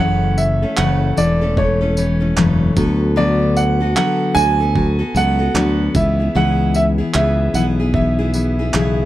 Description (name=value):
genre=acoustic pop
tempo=75 BPM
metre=4/4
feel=swing 60% on 16ths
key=F# minor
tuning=A4 = 439 Hz
part: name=bright upright piano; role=melody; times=0.0-9.1 s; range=C#5 to G#5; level=-20 LUFS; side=right 3 dB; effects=none
part: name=picked steel-string acoustic guitar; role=accompaniment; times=0.0-9.1 s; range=F#2 to A4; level=-19 LUFS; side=left 3 dB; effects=none
part: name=modern bright fingered electric bass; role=bass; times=0.0-9.1 s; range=E1 to D2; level=-17 LUFS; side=equal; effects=none
part: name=dusty soul sampler-style drum kit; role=drums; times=0.4-9.0 s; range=handclaps, kick drum, tambourine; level=-22 LUFS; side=right 2 dB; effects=overdrive
room=little or no reverb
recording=none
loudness=-14 LUFS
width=side -14 dB against mid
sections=0.0-9.1 A section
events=none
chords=0.0 F#m7; 2.8 D6; 6.0 C#m7